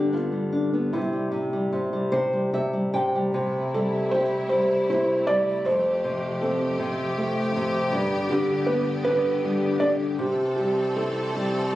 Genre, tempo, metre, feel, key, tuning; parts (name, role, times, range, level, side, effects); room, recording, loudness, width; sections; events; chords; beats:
children's music, lullaby; 74-80 BPM; 3/4; rubato; A4 = 439 Hz
felt-muted upright piano; melody; 0.0-11.8 s; E4 to D5; -25 LUFS; right 1 dB
nylon-string guitar; accompaniment; 0.0-11.8 s; F2 to G5; -25 LUFS; left 1 dB
rich symphonic string section; sustained chords; 3.3-11.8 s; C3 to A4; -31 LUFS; equal
light reverb; recorded on a phone in the room, club reverb; -22 LUFS; side -15 dB against mid
0.0-3.4 A section; 3.4-11.8 B section
nylon-string guitar fill 1.7-3.4
0.0 G; 1.0 C; 3.4 C6; 5.7 Fadd9; 7.9 G; 10.2 C6
0.16 | 0.95 1.75 2.55 | 3.35 4.14 4.91 | 5.67 6.43 7.18 | 7.94 8.69 9.44 | 10.19 10.95 11.71